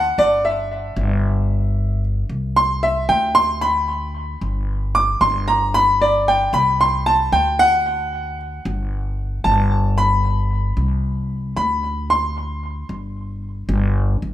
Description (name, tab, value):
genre	latin, Cuban son and guajira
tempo	113 BPM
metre	4/4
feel	straight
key	G major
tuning	A4 = 441 Hz
part	clear grand piano	arpeggios	0.0-12.9 s	D5 to D6	-17 LUFS	equal	tape echo
part	upright bass	bass	0.0-14.3 s	G1 to D2	-21 LUFS	equal	none
room	light reverb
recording	none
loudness	-16 LUFS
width	side -12 dB against mid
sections	0.0-14.2 A section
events	grand piano solo 0.0-14.2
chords	0.4 C/G; 2.6 Cadd9; 3.6 G; 4.7 Gadd11; 6.8 D7/C; 7.9 D; 8.9 G; 11.0 Csus2; 12.1 Gsus4; 13.2 N.C.